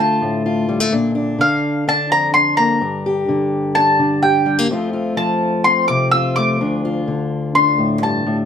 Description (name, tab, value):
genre	folk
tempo	127 BPM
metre	4/4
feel	straight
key	D minor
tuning	A4 = 440 Hz
part	mandolin	melody	0.0-8.4 s	F5 to E6	-16 LUFS	equal	none
part	fingerpicked acoustic archtop guitar	accompaniment	0.0-8.5 s	D2 to G4	-18 LUFS	left 2 dB	none
room	light reverb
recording	dark, warm production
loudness	-14 LUFS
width	side -8 dB against mid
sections	0.0-8.5 A section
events	none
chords	0.0 Dm; 0.9 Bb; 2.8 Gm; 4.7 F; 6.6 Dm